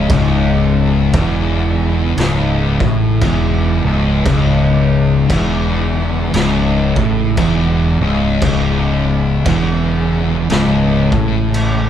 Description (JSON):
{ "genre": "stoner and doom metal", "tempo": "58 BPM", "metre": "4/4", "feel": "swing 60% on 8ths", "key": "C# minor", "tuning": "A4 = 439 Hz", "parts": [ { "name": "tonewheel organ", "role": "sustained chords", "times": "0.0-11.9 s", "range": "C#3 to D#4", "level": "-27 LUFS", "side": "equal", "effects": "none" }, { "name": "fuzz guitar", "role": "riff", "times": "0.0-11.9 s", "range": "C#2 to A2", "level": "-19 LUFS", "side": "equal", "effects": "distortion" }, { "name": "thick fuzz guitar", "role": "riff", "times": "0.0-11.9 s", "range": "C#2 to A2", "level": "-18 LUFS", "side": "left 7 dB", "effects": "distortion" }, { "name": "thick fuzz guitar", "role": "riff", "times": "0.0-11.9 s", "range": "C#2 to A2", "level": "-20 LUFS", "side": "right 4 dB", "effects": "distortion" }, { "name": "fuzz fingered electric bass", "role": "bass", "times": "0.0-11.9 s", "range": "C#1 to A1", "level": "-19 LUFS", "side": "equal", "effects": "overdrive" }, { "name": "raw garage drum kit", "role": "drums", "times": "0.1-11.8 s", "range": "crash cymbal, kick drum, snare drum", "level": "-21 LUFS", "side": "equal", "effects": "none" } ], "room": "moderate large studio reverb, RT60 1.2 s", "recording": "band playing live in one room", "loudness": "-12 LUFS", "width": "side -9 dB against mid", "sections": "0.0-11.9 A section", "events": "none", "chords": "0.0 C#m" }